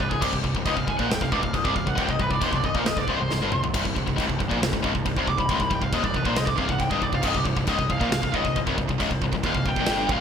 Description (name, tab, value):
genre	heavy metal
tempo	137 BPM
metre	4/4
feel	straight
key	C minor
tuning	A4 = 441 Hz
part	nasal lead guitar with a parked wah	melody	0.0-10.2 s	G4 to D6	-28 LUFS	equal	overdrive
part	scooped high-gain guitar	riff	0.0-10.2 s	C2 to Bb2	-29 LUFS	right 10 dB	distortion
part	tight distorted guitar	riff	0.0-10.2 s	C2 to Bb2	-27 LUFS	left 7 dB	distortion
part	fuzz picked electric bass	bass	0.0-10.2 s	C1 to Bb1	-31 LUFS	right 1 dB	overdrive
part	big rock drum kit	drums	0.0-10.2 s	china cymbal, crash cymbal, kick drum, snare drum, toms	-28 LUFS	equal	gated reverb
part	pipe organ, foundations	sustained chords	3.7-10.2 s	C3 to Eb4	-38 LUFS	right 4 dB	none
room	moderate plate reverb, RT60 1.7 s, studio reverb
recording	bright 1980s-style digital production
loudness	-22 LUFS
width	side -7 dB against mid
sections	0.0-10.2 A section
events	lead electric guitar solo 0.0-10.2; drum fill 3.3-3.7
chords	0.0 Cm